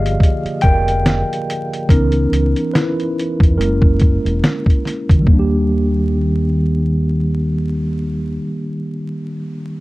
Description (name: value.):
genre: lo-fi hip hop.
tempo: 71 BPM.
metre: 4/4.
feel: swing 57% on 16ths.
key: Eb major.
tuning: A4 = 441 Hz.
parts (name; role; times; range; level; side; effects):
mellow tine electric piano; accompaniment; 0.0-9.8 s; D3 to G5; -18 LUFS; equal; medium stereo tremolo.
deep dub fingered electric bass; bass; 0.0-8.4 s; Fb1 to Fb2; -18 LUFS; equal; none.
dusty soul sampler-style drum kit; drums; 0.1-5.5 s; hi-hat, kick drum, snare drum; -14 LUFS; equal; none.
room: moderate small room reverb, RT60 0.6 s.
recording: dark, warm production, vinyl crackle.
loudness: -14 LUFS.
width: side -19 dB against mid.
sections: 0.0-5.3 A section; 5.3-8.7 B section.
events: tine electric piano solo 0.0-5.3.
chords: 0.0 Gm7; 1.9 Dbm7; 3.6 Gb9; 5.3 Ebmaj7.